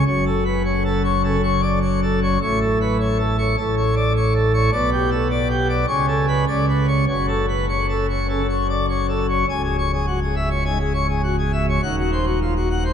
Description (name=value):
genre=classical, organ toccata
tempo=102 BPM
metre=4/4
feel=straight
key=F# minor, C# minor from 9.5 s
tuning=A4 = 440 Hz
part: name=pipe organ, plenum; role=solo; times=0.0-12.9 s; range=C#1 to G#5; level=-18 LUFS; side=equal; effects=none
room=wet cathedral reverb, RT60 5.8 s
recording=in a vast, echoing space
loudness=-18 LUFS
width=side -8 dB against mid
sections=0.0-9.5 A section; 9.5-12.9 B section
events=none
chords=0.1 F#m; 2.4 Aadd9; 4.7 G/B; 5.9 Aadd9/C#; 6.5 Bmadd9/C#; 7.1 F#m; 9.5 C#m; 11.8 Cdim/Eb